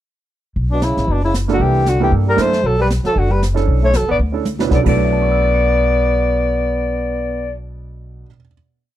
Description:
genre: jazz, small-group swing and bop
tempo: 232 BPM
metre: 4/4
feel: swing 58% on 8ths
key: B minor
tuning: A4 = 438 Hz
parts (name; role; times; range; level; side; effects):
- upright bass; bass; 0.6-8.2 s; F#1 to G2; -18 LUFS; equal; none
- jazz brush drum kit; drums; 0.6-4.9 s; brushed snare drum, crash cymbal, hi-hat, kick drum, snare drum, toms; -23 LUFS; equal; none
- breathy alto saxophone; melody; 0.7-7.5 s; D4 to D5; -18 LUFS; left 2 dB; none
- bright trombone; second line; 0.7-7.5 s; B2 to B3; -23 LUFS; right 2 dB; none
- warm baby grand piano; accompaniment; 1.5-8.5 s; B2 to C#7; -23 LUFS; right 10 dB; none
room: small room ambience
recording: dry, close 1970s-style studio recording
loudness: -14 LUFS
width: side -12 dB against mid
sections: 0.6-4.7 A section; 4.7-6.8 final chord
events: drum fill 4.4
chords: 0.6 Bm11; 1.6 C13; 2.6 Bm11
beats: | 0.57 0.83 1.08 1.34 | 1.60 1.86 2.12 2.38 | 2.64 2.90 3.15 3.41 | 3.67 3.93 4.19 4.45 | 4.70 4.96 5.22 5.48 | 5.74 5.99 6.25 6.51

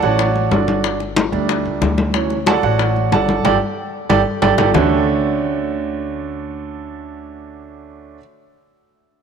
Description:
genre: Afro-Cuban jazz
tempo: 184 BPM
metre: 4/4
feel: straight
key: D major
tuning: A4 = 440 Hz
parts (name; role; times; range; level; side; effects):
- clear baby grand piano; accompaniment; 0.0-8.2 s; D3 to A5; -18 LUFS; right 7 dB; none
- upright bass; bass; 0.0-8.2 s; G1 to D2; -23 LUFS; left 3 dB; none
- bongos; percussion; 0.0-4.8 s; none; -24 LUFS; left 14 dB; none
- congas; percussion; 0.0-4.8 s; none; -21 LUFS; left 2 dB; none
room: moderate plate reverb, RT60 2.8 s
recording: 1960s-style stereo with parts hard left and right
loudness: -15 LUFS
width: side -6 dB against mid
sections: 0.0-4.7 A section; 4.7-7.4 B section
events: grand piano solo 0.0-4.7; band accent 3.4-4.7; drum fill 3.9-4.7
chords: 0.0 Dmaj7; 0.8 Gsus2; 2.1 Dmaj7; 3.4 Gsus2; 4.7 Dmaj7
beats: 0.19 0.52 | 0.84 1.17 1.49 1.82 | 2.14 2.47 2.79 3.12 | 3.45 3.77 4.10 4.42 | 4.75 5.08 5.40 5.73 | 6.05 6.38 6.70 7.03

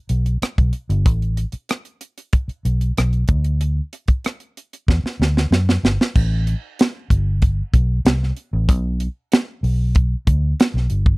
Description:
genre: lush 1970s-style soul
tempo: 94 BPM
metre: 4/4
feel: straight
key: A dorian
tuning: A4 = 439 Hz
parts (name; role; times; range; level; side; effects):
- vintage muted fingered electric bass; bass; 0.1-11.2 s; G1 to F#2; -18 LUFS; equal; none
- tight funk drum kit; drums; 0.1-11.2 s; crash cymbal, hi-hat, kick drum, rim click, snare drum; -16 LUFS; equal; none
room: little or no reverb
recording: dry, close 1970s-style studio recording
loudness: -17 LUFS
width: side -26 dB against mid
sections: 0.0-6.1 A section; 6.1-11.2 B section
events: drum fill 4.9-6.1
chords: none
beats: 0.41 | 1.05 1.69 2.33 2.97 | 3.60 4.24 4.88 5.51 | 6.15 6.78 7.42 8.05 | 8.69 9.32 9.96 10.59

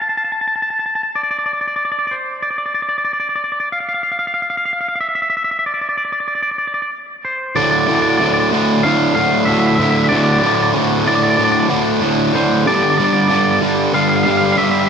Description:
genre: rock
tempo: 94 BPM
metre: 4/4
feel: straight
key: D minor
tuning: A4 = 440 Hz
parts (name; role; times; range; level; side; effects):
- twangy electric guitar; melody; 0.0-14.9 s; C5 to A5; -17 LUFS; equal; slapback echo, analog delay
- distorted electric guitar; riff; 7.6-14.9 s; D2 to G3; -14 LUFS; right 1 dB; distortion
room: wet lush hall reverb, RT60 2.7 s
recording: big arena sound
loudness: -14 LUFS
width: side -7 dB against mid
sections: 0.0-7.6 A section; 7.6-14.9 B section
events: none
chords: 0.0 N.C.; 7.6 D5; 12.7 G5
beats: 0.50 1.15 1.79 | 2.43 3.08 3.72 4.36 | 5.00 5.64 6.29 6.93 | 7.57 8.21 8.85 9.48 | 10.12 10.76 11.40 12.03 | 12.67 13.31 13.94 14.58

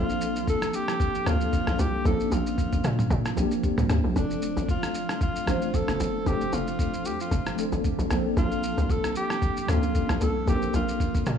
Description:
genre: amapiano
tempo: 114 BPM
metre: 4/4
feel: swing 55% on 16ths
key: unclear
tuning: A4 = 440 Hz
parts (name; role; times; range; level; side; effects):
- warm alto saxophone; melody; 0.0-11.4 s; D4 to A4; -31 LUFS; left 1 dB; tape echo
- mellow tine electric piano; accompaniment; 0.0-11.4 s; F3 to C5; -28 LUFS; equal; medium stereo tremolo
- tight log drum bass; bass; 0.0-11.4 s; F1 to Bb2; -28 LUFS; equal; none
- lo-fi sampler-style drum kit; drums; 0.1-11.4 s; kick drum, rim click, shaker, toms; -29 LUFS; equal; none
room: little or no reverb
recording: small room ambience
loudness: -23 LUFS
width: side -8 dB against mid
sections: 0.0-11.4 A section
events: none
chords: 0.0 Bbmaj9; 4.2 F6; 8.1 Bbmaj9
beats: 0.47 1.00 1.53 | 2.05 2.58 3.11 3.63 | 4.16 4.69 5.21 5.74 | 6.26 6.79 7.32 7.84 | 8.37 8.90 9.42 9.95 | 10.47 11.00

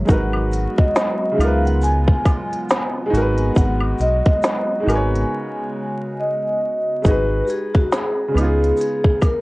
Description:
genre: lo-fi hip hop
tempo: 69 BPM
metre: 4/4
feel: swing 57% on 16ths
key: G# minor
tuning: A4 = 441 Hz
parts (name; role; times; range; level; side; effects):
- clear upright piano; accompaniment; 0.0-9.4 s; C#3 to C#5; -23 LUFS; right 1 dB; cassette tape, plate reverb
- hollow soft pad; sustained chords; 0.0-7.0 s; C#3 to F#4; -28 LUFS; equal; chorus
- vibraphone with soft mallets; melody; 0.1-9.4 s; F#4 to G#5; -23 LUFS; equal; plate reverb
- deep dub fingered electric bass; bass; 0.1-8.7 s; G#1 to C#2; -19 LUFS; equal; none
- organic electronic drum kit; drums; 0.1-9.4 s; hi-hat, kick drum, snare drum; -18 LUFS; equal; overdrive, vintage 12-bit sampler grit
- egg shaker and woodblock; percussion; 0.1-9.4 s; none; -32 LUFS; left 1 dB; none
room: light reverb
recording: worn, warbling old tape, cassette tape, vinyl crackle, warbly pitch drift, nothing above 10.4 kHz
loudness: -16 LUFS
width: side -21 dB against mid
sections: 0.0-7.0 A section; 7.0-9.4 B section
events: break 5.3-7.0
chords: 0.1 G#m7; 1.4 C#13; 3.1 G#m7; 4.9 G#m11; 7.0 G#m7; 8.3 C#9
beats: | 0.09 0.96 1.83 2.70 | 3.57 4.44 5.31 6.18 | 7.05 7.92 8.79

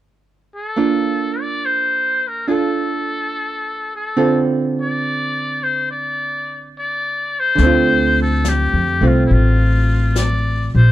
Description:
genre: jazz ballad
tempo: 70 BPM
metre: 4/4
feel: swing 69% on 8ths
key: D minor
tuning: A4 = 436 Hz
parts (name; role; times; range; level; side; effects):
- trumpet with metal mute; melody; 0.6-10.9 s; E4 to D5; -20 LUFS; left 2 dB; none
- archtop guitar, miked and amplified; accompaniment; 0.8-10.9 s; D3 to A4; -19 LUFS; right 3 dB; none
- upright bass; bass; 7.6-10.9 s; A1 to F2; -15 LUFS; left 1 dB; none
- jazz brush drum kit; drums; 7.6-10.9 s; brushed snare drum, hi-hat, snare drum; -29 LUFS; left 2 dB; none
room: little or no reverb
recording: dark, warm production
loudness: -15 LUFS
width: side -14 dB against mid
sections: 0.8-7.6 A section; 7.6-10.9 B section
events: none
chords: 0.0 N.C.; 0.8 Bbmaj7; 4.2 Dm7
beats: | 0.76 1.61 2.47 3.31 | 4.16 5.01 5.86 6.72 | 7.58 8.44 9.30 10.15

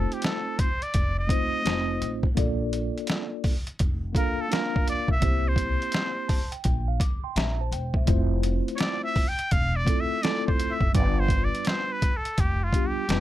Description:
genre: hip hop, jazz-hop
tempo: 84 BPM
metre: 4/4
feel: swing 65% on 16ths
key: unclear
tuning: A4 = 440 Hz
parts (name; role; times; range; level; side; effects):
- trumpet with straight mute; melody; 0.0-13.2 s; F4 to G5; -29 LUFS; equal; none
- mellow tine electric piano; accompaniment; 0.0-13.2 s; G3 to D6; -30 LUFS; equal; medium stereo tremolo
- upright bass; bass; 0.0-13.2 s; E1 to C2; -27 LUFS; equal; none
- trip hop sampler-style drum kit; drums; 0.1-13.2 s; hi-hat, kick drum, snare drum; -25 LUFS; equal; overdrive
room: little or no reverb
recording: none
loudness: -23 LUFS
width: side -14 dB against mid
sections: 0.0-13.2 A section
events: muted trumpet solo 0.0-13.2; tine electric piano fill 5.9-8.1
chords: 0.0 F7; 2.4 Bbmaj7; 5.2 C7; 8.1 Fmaj7; 10.9 G7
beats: 0.23 0.94 1.66 | 2.37 3.08 3.80 4.51 | 5.23 5.94 6.66 7.37 | 8.09 8.80 9.51 10.23 | 10.94 11.66 12.37 13.09

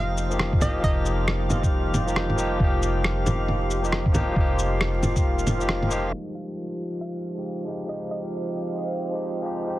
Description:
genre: future garage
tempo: 136 BPM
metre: 4/4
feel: swing 62% on 16ths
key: F minor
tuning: A4 = 438 Hz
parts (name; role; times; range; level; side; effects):
- hollow square pluck; melody; 0.0-1.5, 6.3-8.5 s; Eb5 to F5; -36 LUFS; right 2 dB; chorus, dub echo
- barky tine electric piano; accompaniment; 0.0-9.8 s; F3 to G4; -28 LUFS; left 1 dB; sidechain pumping, low-pass filter, dub echo
- deep dark ambient pad; sustained chords; 0.0-9.8 s; F4 to G5; -32 LUFS; right 1 dB; chorus, built-in reverb, sidechain pumping
- soft 808-style bass; bass; 0.0-6.1 s; F1; -27 LUFS; equal; sidechain pumping
- drifting glass-harmonics texture; texture; 0.0-9.8 s; F5; -37 LUFS; right 3 dB; chorus, built-in reverb
- electronic shaker, rim click and bongos; drums; 0.2-6.0 s; none; -27 LUFS; equal; none
- electronic kick drum; drums; 0.5-5.2 s; none; -23 LUFS; equal; none
room: light reverb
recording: heavily compressed radio sound, multiband compression, vinyl crackle, low-pass filter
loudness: -22 LUFS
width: side -16 dB against mid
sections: 0.0-6.1 A section; 6.1-9.8 B section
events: band accent 5.7; filter sweep on tine electric piano 6.1-9.8; filter sweep 6.1-9.8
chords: 0.0 Ebadd9/F; 6.1 Fm9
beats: 0.40 | 0.84 1.28 1.72 2.16 | 2.60 3.04 3.48 3.93 | 4.37 4.81 5.25 5.69 | 6.13 6.57 7.01 7.46 | 7.90 8.34 8.78 9.22 | 9.66

